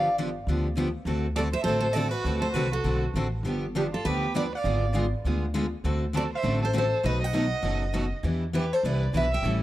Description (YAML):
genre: acoustic string swing (jazz manouche)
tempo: 201 BPM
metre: 4/4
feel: swing 58% on 8ths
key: D mixolydian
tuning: A4 = 440 Hz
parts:
  - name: picked steel-string acoustic guitar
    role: melody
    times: 0.0-9.4 s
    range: G4 to G5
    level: -30 LUFS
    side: equal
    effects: none
  - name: warm violin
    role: second line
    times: 0.0-9.4 s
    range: D4 to E5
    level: -33 LUFS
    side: right 5 dB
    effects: none
  - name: picked steel-string acoustic guitar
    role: accompaniment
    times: 0.0-9.6 s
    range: B2 to A4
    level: -31 LUFS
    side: left 3 dB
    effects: none
  - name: picked steel-string acoustic guitar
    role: accompaniment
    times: 0.0-9.6 s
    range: B2 to B4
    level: -34 LUFS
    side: right 4 dB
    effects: none
  - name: upright bass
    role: bass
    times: 0.0-9.6 s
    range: F#1 to E2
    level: -29 LUFS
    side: equal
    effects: none
room: light reverb, studio ambience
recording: dry, close 1970s-style studio recording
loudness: -24 LUFS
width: side -15 dB against mid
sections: 0.0-9.6 A section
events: none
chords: 0.0 G7; 1.1 D7; 3.5 G7; 4.6 G#dim7; 5.8 D7; 7.0 B7; 8.2 Em7